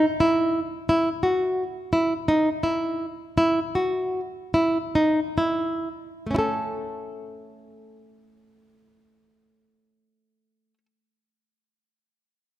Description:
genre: contemporary instrumental, contemporary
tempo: 130-175 BPM (eighths)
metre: 7/8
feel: straight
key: A lydian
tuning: A4 = 440 Hz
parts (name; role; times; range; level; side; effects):
- nylon-string guitar; solo; 0.0-10.9 s; A3 to A4; -22 LUFS; equal; none
room: moderate concert hall reverb, RT60 1.9 s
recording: close, detailed microphones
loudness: -22 LUFS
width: side -13 dB against mid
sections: 0.9-6.3 A section; 6.3-9.5 B section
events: slowing down 0.9-6.3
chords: 0.0 N.C.; 6.3 A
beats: 0.19 0.54 | 0.88 1.22 1.57 1.92 2.27 2.63 3.00 | 3.37 3.75 4.14 4.54 4.95 5.37 5.80 | 6.25 6.71 7.17 7.63 8.09 8.55 9.02

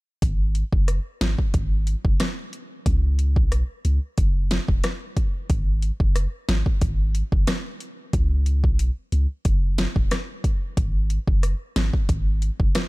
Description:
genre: dancehall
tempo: 91 BPM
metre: 4/4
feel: straight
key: unclear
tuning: A4 = 438 Hz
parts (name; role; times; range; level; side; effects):
- punchy sub bass; bass; 0.2-12.7 s; E1 to C#2; -22 LUFS; equal; none
- deep house drum kit; drums; 0.2-12.9 s; hi-hat, kick drum, rim click, snare drum; -22 LUFS; equal; none
room: little or no reverb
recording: none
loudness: -20 LUFS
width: side -22 dB against mid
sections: 0.2-12.9 A section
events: none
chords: none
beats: | 0.22 0.88 1.54 2.20 | 2.86 3.52 4.18 4.84 | 5.50 6.16 6.82 7.48 | 8.13 8.79 9.45 10.11 | 10.77 11.43 12.09 12.75

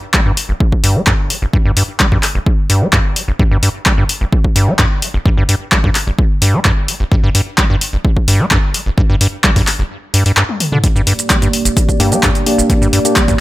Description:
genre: acid house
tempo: 129 BPM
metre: 4/4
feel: straight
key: G minor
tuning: A4 = 437 Hz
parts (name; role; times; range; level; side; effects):
- acid bass, square; riff; 0.1-13.3 s; G1 to Bb3; -15 LUFS; equal; overdrive, cassette tape, tape echo
- electronic kick drum; drums; 0.1-13.4 s; none; -14 LUFS; equal; overdrive
- punchy analog drum machine; drums; 0.1-13.4 s; handclaps, hi-hat, shaker, toms; -15 LUFS; left 1 dB; overdrive
- dark analog pad; sustained chords; 10.8-13.4 s; Bb3 to D5; -18 LUFS; right 2 dB; chorus, sidechain pumping
- tine electric piano; stabs; 12.0-13.2 s; Bb3 to G4; -16 LUFS; left 1 dB; lush chorus, tape echo
room: digital ambience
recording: none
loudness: -11 LUFS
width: side -17 dB against mid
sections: 0.0-13.4 A section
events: kick drops out 9.9-10.8; drum fill 10.5-10.8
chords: 0.0 Gm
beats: 0.14 0.60 1.07 | 1.53 2.00 2.46 2.93 | 3.40 3.86 4.33 4.79 | 5.26 5.72 6.19 6.65 | 7.12 7.58 8.05 8.51 | 8.98 9.44 9.91 10.37 | 10.84 11.30 11.77 12.23 | 12.70 13.16

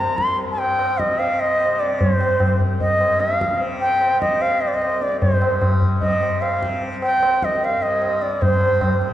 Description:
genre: indian classical, Hindustani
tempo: 150 BPM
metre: 4/4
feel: straight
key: C raga bhimpalasi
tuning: A4 = 436 Hz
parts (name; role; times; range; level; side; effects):
- bright reedy bansuri; melody; 0.0-9.0 s; C5 to C6; -19 LUFS; equal; none
- tanpura; drone; 0.0-9.1 s; C2 to C3; -29 LUFS; left 2 dB; none
- tabla; percussion; 0.2-9.1 s; none; -22 LUFS; equal; none
room: wet concert hall reverb, RT60 2.3 s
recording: dark, warm production, nothing above 10.7 kHz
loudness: -17 LUFS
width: side -12 dB against mid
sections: 0.0-8.4 A section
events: none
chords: none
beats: | 0.38 0.79 1.19 1.60 | 2.00 2.40 2.81 3.21 | 3.61 4.02 4.42 4.82 | 5.22 5.62 6.02 6.42 | 6.82 7.22 7.62 8.01 | 8.41 8.81

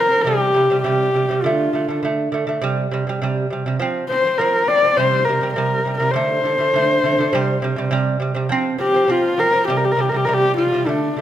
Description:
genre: mongolian traditional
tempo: 102 BPM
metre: 4/4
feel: straight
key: unclear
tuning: A4 = 440 Hz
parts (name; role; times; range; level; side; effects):
- dark horsehead fiddle; melody; 0.0-11.2 s; D4 to D5; -17 LUFS; left 2 dB; none
- lute; arpeggios; 0.0-11.2 s; C3 to C4; -20 LUFS; right 3 dB; none
room: wet recital hall reverb, RT60 1.4 s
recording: close, detailed microphones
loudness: -16 LUFS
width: side -11 dB against mid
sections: 0.0-11.2 A section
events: none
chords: 0.3 C5; 1.4 D5; 2.6 C5; 3.8 F5; 5.0 C5; 6.2 D5; 7.3 C5; 8.5 F5; 9.7 C5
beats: 0.26 0.85 | 1.44 2.03 2.62 3.21 | 3.80 4.39 4.98 5.57 | 6.16 6.75 7.33 7.92 | 8.51 9.10 9.69 10.28 | 10.87

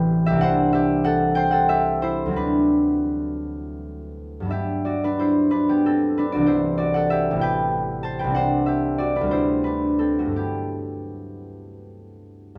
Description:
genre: classical, solo harp piece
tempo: 47-66 BPM (dotted quarters)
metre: 6/8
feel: rubato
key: G major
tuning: A4 = 441 Hz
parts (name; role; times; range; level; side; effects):
- concert harp; solo; 0.0-12.6 s; A1 to A5; -22 LUFS; equal; none
room: little or no reverb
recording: dark, warm production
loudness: -22 LUFS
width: mono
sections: 0.0-12.6 A section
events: none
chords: 0.4 Cadd9; 2.4 D13; 4.5 Gmaj9; 6.5 Cmaj9; 7.4 Am9; 8.4 Cadd9; 9.3 D9sus4; 10.4 Gmaj9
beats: | 0.42 1.37 | 2.38 3.43 | 4.50 5.51 | 6.47 7.43 | 8.36 9.32 | 10.36 11.50

